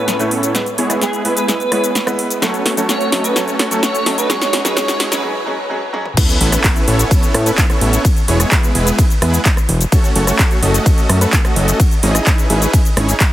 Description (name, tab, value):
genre	EDM, festival progressive house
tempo	128 BPM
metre	4/4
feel	straight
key	E major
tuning	A4 = 442 Hz
part	airy dreamy lead	melody	0.0-5.2 s	G#4 to C#5	-22 LUFS	right 1 dB	chorus, cassette tape, dub echo
part	clear grand piano	accompaniment	0.0-6.0 s	A2 to C#5	-23 LUFS	right 1 dB	sidechain pumping, dub echo
part	supersaw chords	riff	0.0-13.2 s	G#3 to D#5	-19 LUFS	right 1 dB	sidechain pumping, low-pass filter, dub echo
part	riser and sub drop	sound effects	0.7-8.0 s	none	-30 LUFS	equal	none
part	big-room dance drum kit	drums	0.1-13.3 s	crash cymbal, handclaps, hi-hat, ride cymbal, rim click, shaker, snare drum, toms	-19 LUFS	equal	none
part	electronic kick drum	drums	6.2-13.3 s	none	-13 LUFS	equal	none
part	fat analog bass	bass	6.4-13.1 s	E1 to A2	-15 LUFS	equal	sidechain pumping
room	light reverb, digital ambience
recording	heavily compressed radio sound, high-pass filter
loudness	-12 LUFS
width	side -14 dB against mid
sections	0.0-6.2 A section; 6.2-13.3 B section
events	build-up 0.0-6.2; drum fill 0.0-5.2, 5.9; filter sweep on supersaw synth 0.0-6.2; break 5.2-6.2; drop 6.2-13.3; impact 6.2-8.0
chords	0.0 Aadd9; 0.5 E; 2.4 F#m; 4.3 C#5; 6.2 Aadd9; 8.0 E; 9.9 F#m; 11.8 C#madd9/G#